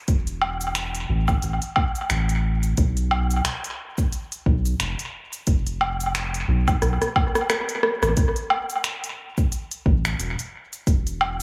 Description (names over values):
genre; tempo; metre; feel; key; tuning
organic downtempo; 89 BPM; 4/4; swing 57% on 16ths; unclear; A4 = 440 Hz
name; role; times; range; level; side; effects
round analog bass; bass; 0.1-11.4 s; E1 to B1; -26 LUFS; equal; sidechain pumping
deep house drum kit; drums; 0.1-11.4 s; cabasa, finger snaps, hi-hat, rim click, woodblock; -27 LUFS; equal; analog delay
electronic kick drum; drums; 0.1-11.0 s; none; -24 LUFS; equal; none
room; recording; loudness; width
moderate spring reverb, RT60 2.3 s; echo-heavy mix, studio ambience; -24 LUFS; mono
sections
0.0-8.2 A section; 8.2-11.4 B section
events
drum fill 6.8-8.2; kick drops out 7.5-8.2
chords
none